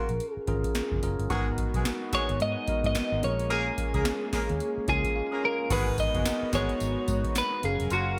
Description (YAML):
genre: R&B, new jack swing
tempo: 109 BPM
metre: 4/4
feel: swing 60% on 16ths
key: G# dorian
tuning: A4 = 441 Hz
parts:
  - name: twelve-string electric guitar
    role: melody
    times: 0.0-8.2 s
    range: F#4 to D#5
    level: -32 LUFS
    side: equal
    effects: delay
  - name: bell-like tine electric piano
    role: accompaniment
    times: 0.0-8.2 s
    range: B3 to G#5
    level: -38 LUFS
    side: equal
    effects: analog chorus
  - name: warm horn section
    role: stabs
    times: 0.0-8.1 s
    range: F#3 to A#4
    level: -38 LUFS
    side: equal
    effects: none
  - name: vintage muted fingered electric bass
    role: bass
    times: 0.1-8.2 s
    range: E#1 to G#2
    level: -34 LUFS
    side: equal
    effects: none
  - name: booming analog drum machine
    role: drums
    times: 0.1-8.1 s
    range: crash cymbal, hi-hat, kick drum, snare drum, tambourine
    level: -34 LUFS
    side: equal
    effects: gated reverb
  - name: brassy analog pad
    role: sustained chords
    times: 1.3-8.2 s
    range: F#3 to E#5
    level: -39 LUFS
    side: equal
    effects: chorus
room: moderate plate reverb, RT60 1.4 s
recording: bright 1980s-style digital production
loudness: -28 LUFS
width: mono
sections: 0.0-5.7 A section; 5.7-8.2 B section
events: tine electric piano fill 4.9-5.7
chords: 0.0 F#maj7; 1.3 G#m7; 3.2 A#m7; 5.7 G#m7; 7.6 F#maj7